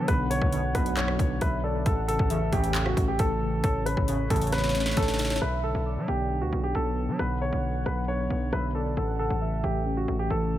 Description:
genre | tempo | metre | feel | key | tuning
hip hop, trap | 135 BPM | 4/4 | half-time | B minor | A4 = 440 Hz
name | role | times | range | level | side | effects
warm baby grand piano | melody | 0.0-10.6 s | F#4 to C#5 | -30 LUFS | equal | low-pass filter, digital delay
mellow tine electric piano | accompaniment | 0.0-10.6 s | A2 to D4 | -32 LUFS | left 1 dB | fast stereo tremolo, low-pass filter
hollow soft pad | sustained chords | 0.0-10.6 s | D3 to B4 | -38 LUFS | right 2 dB | none
distorted 808-style bass | bass | 0.0-10.6 s | A1 to F#3 | -30 LUFS | equal | distortion
warm velvety synth lead | second line | 0.1-9.8 s | C#5 to F#5 | -36 LUFS | right 1 dB | chorus, digital delay
trap drum kit | drums | 0.1-5.5 s | handclaps, hi-hat, kick drum, rim click, snare drum | -28 LUFS | equal | overdrive
chorused polysynth | stabs | 0.5-4.7 s | F#1 to C#3 | -34 LUFS | right 2 dB | digital delay
room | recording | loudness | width
light reverb, digital ambience | none | -24 LUFS | side -13 dB against mid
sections
0.0-5.4 A section; 5.4-10.6 B section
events
drum fill 4.5-5.4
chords
0.0 Bm; 1.9 A; 5.4 Bm; 9.0 A

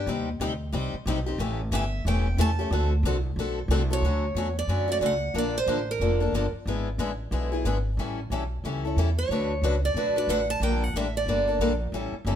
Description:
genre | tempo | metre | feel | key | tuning
acoustic string swing (jazz manouche) | 182 BPM | 4/4 | swing 60% on 8ths | D major from 4.0 s | A4 = 439 Hz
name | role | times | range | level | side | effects
picked steel-string acoustic guitar | melody | 0.0-6.5, 9.2-11.6 s | Bb4 to A5 | -28 LUFS | right 4 dB | none
picked steel-string acoustic guitar | accompaniment | 0.0-12.4 s | C3 to B4 | -29 LUFS | left 3 dB | none
upright bass | bass | 0.0-12.4 s | E1 to F#2 | -27 LUFS | equal | none
room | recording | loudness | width
moderate studio reverb, RT60 0.9 s | band playing live in one room | -24 LUFS | side -9 dB against mid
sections
0.0-4.0 A section; 4.0-12.4 B section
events
steel-string acoustic guitar solo 0.0-4.0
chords
0.1 Cm; 1.4 A7; 2.7 D7; 4.0 Dmaj7; 5.3 Bbmaj7; 6.7 E7/G#; 8.0 A7; 9.3 D6; 10.6 Gmadd9

